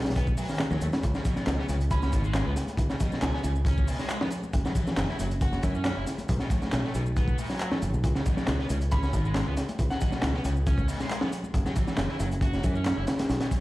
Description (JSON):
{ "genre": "breakbeat, breaks", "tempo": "137 BPM", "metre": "4/4", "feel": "straight", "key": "C# minor", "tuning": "A4 = 440 Hz", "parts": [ { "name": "fingered electric bass", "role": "bass", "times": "0.0-13.4 s", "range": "F#1 to F#2", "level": "-28 LUFS", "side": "equal", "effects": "none" }, { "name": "crunchy breakbeat drum kit", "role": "drums", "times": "0.0-13.6 s", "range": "hi-hat, kick drum, snare drum", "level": "-28 LUFS", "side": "equal", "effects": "none" }, { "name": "electronic shaker and handclaps", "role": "drums", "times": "0.1-13.6 s", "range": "none", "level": "-39 LUFS", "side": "equal", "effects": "none" }, { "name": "fuzz guitar", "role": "riff", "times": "0.2-13.6 s", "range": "A2 to F#4", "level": "-35 LUFS", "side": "equal", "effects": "distortion, overdrive, vintage 12-bit sampler grit, ping-pong delay" }, { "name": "congas", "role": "percussion", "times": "0.3-13.6 s", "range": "none", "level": "-39 LUFS", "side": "left 1 dB", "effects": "none" }, { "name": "glassy synth bell", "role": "melody", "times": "1.9-3.4, 8.9-10.1 s", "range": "F#5 to B5", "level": "-39 LUFS", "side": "right 2 dB", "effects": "chorus, phaser, AM radio sound, ping-pong delay" } ], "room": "light reverb, studio ambience", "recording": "played on a big sound system in a bare room, large studio reverb, vinyl crackle", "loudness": "-25 LUFS", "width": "side -18 dB against mid", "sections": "0.0-13.6 A section", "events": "none", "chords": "0.0 B; 1.0 C#5; 4.5 F#5; 6.3 B5; 8.0 C#5; 11.5 F#5" }